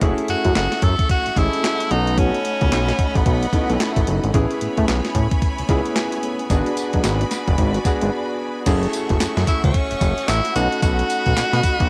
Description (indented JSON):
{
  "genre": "R&B, new jack swing",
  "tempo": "111 BPM",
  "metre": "4/4",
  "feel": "swing 61% on 16ths",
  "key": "F# minor",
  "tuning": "A4 = 439 Hz",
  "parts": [
    { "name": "clear grand piano", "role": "accompaniment", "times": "0.0-11.9 s", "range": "G#3 to G#4", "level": "-27 LUFS", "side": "equal", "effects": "cassette tape" },
    { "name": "bright studio string section", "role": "sustained chords", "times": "0.0-11.9 s", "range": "A3 to C#6", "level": "-32 LUFS", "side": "equal", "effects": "cassette tape" },
    { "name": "mellow synth brass", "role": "stabs", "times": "0.0-8.1 s", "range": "G#3 to G#4", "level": "-33 LUFS", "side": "equal", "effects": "none" },
    { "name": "fat analog bass", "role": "bass", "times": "0.0-11.9 s", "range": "F#1 to B2", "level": "-23 LUFS", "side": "equal", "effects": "none" },
    { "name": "crisp 8-bit digital drum machine", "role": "drums", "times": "0.0-11.9 s", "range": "crash cymbal, handclaps, hi-hat, kick drum, snare drum, tambourine", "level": "-23 LUFS", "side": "equal", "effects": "cassette tape" },
    { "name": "edgy tenor saxophone", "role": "melody", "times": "0.3-4.1, 9.5-11.9 s", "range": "A3 to A4", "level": "-25 LUFS", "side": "equal", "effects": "cassette tape" }
  ],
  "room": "light reverb",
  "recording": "home recording on cassette",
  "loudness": "-20 LUFS",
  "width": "mono",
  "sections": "0.0-8.7 A section; 8.7-11.9 B section",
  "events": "break 8.1-8.7",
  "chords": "0.0 F#m7; 1.9 B7; 4.3 Amaj9; 6.5 G#m7b5; 8.7 F#m7; 10.6 B7",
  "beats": "| 0.02 0.56 1.10 1.64 | 2.18 2.72 3.26 3.80 | 4.34 4.88 5.42 5.96 | 6.50 7.04 7.58 8.12 | 8.66 9.21 9.74 10.29 | 10.83 11.37"
}